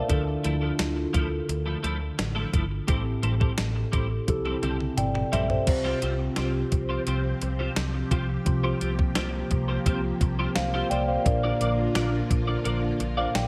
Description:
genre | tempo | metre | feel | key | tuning
1980s-style pop | 86 BPM | 4/4 | straight | unclear | A4 = 440 Hz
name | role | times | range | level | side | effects
mellow tine electric piano | accompaniment | 0.0-13.5 s | A2 to A5 | -31 LUFS | equal | phaser
twelve-string electric guitar | riff | 0.0-13.4 s | F3 to D5 | -36 LUFS | equal | ensemble chorus, tape echo
vintage muted fingered electric bass | bass | 0.1-13.5 s | G1 to D2 | -32 LUFS | equal | none
clean 12-bit digital drum machine | drums | 0.1-13.5 s | crash cymbal, hi-hat, kick drum, snare drum, toms | -30 LUFS | equal | gated reverb
string machine, full ensemble | sustained chords | 5.7-13.5 s | D3 to G4 | -35 LUFS | equal | phaser, ensemble chorus
room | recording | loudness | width
light reverb | none | -26 LUFS | mono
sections
0.0-5.7 A section; 5.7-13.5 B section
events
drum fill 4.3-5.7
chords
0.1 Dmadd9; 2.9 Am7; 4.3 C6; 5.7 Csus4; 11.3 Bb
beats
| 0.09 0.79 1.49 2.19 | 2.88 3.58 4.28 4.98 | 5.68 6.37 7.07 7.77 | 8.47 9.16 9.86 10.56 | 11.26 11.96 12.65 13.35

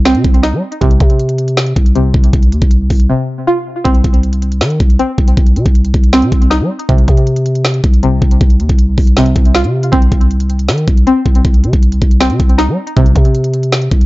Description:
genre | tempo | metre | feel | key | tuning
hip hop, trap | 158 BPM | 4/4 | half-time | C minor | A4 = 439 Hz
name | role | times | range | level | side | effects
string-like resonator pluck | arpeggios | 0.0-14.1 s | C3 to F4 | -15 LUFS | equal | chorus, phaser, tape echo
growling 808-style bass | bass | 0.0-14.1 s | C2 to G3 | -13 LUFS | equal | none
trap drum kit | drums | 0.1-14.1 s | hi-hat, kick drum, snare drum | -11 LUFS | equal | none
room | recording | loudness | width
little or no reverb | dark, warm production, nothing above 7.7 kHz | -9 LUFS | side -19 dB against mid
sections
0.0-14.1 A section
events
break 3.1-3.9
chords
0.0 Cm; 0.8 F5/C; 3.9 Cm; 6.9 F5/C; 9.9 Cm; 13.0 N.C.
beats
0.06 0.43 | 0.81 1.20 1.57 1.95 | 2.33 2.71 3.09 3.47 | 3.85 4.23 4.61 4.99 | 5.37 5.75 6.13 6.51 | 6.89 7.27 7.65 8.03 | 8.41 8.79 9.17 9.55 | 9.93 10.31 10.69 11.07 | 11.45 11.83 12.21 12.59 | 12.97 13.35 13.73

